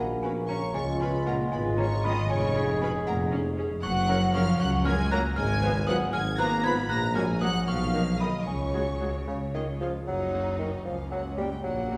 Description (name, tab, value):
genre	cinematic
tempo	77 BPM (dotted quarters)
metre	6/8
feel	straight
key	F# major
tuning	A4 = 440 Hz
part	rich chamber violin section	melody	0.0-12.0 s	C#5 to Cb7	-41 LUFS	equal	none
part	worn celesta	melody	0.0-9.8 s	F#5 to Ab6	-38 LUFS	equal	none
part	mellow hollow large flute ensemble	second line	0.0-9.8 s	A#4 to Cb6	-37 LUFS	equal	none
part	rich chamber violin section	second line	0.0-12.0 s	A#3 to Cb6	-39 LUFS	equal	none
part	warm clarinet	second line	0.0-9.9 s	C#4 to Cb5	-39 LUFS	equal	none
part	warm bassoon	accompaniment	0.0-12.0 s	C#3 to A#3	-37 LUFS	equal	none
part	mellow French horn section	sustained chords	0.0-9.9 s	G#3 to G#4	-42 LUFS	equal	none
part	mellow tuba	bass	0.0-12.0 s	E#1 to C#2	-35 LUFS	equal	none
part	rich chamber cello section	bass	0.0-12.0 s	C#2 to Cb4	-35 LUFS	equal	none
part	rich symphonic double bass section	bass	0.0-12.0 s	E#1 to C#2	-34 LUFS	equal	none
part	rich studio viola section	accompaniment	0.2-12.0 s	G#3 to A#4	-40 LUFS	equal	none
room	wet scoring stage reverb, RT60 1.6 s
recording	heard from further back in the room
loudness	-27 LUFS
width	mono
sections	0.0-10.1 A section; 10.1-12.0 A section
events	none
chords	0.0 F#/A#; 0.7 C#; 2.3 C#/E#; 3.8 F#; 5.4 Fdim/Ab; 6.9 F#/A#; 7.7 Bmaj7; 8.5 C#sus4; 9.3 C#; 10.1 F#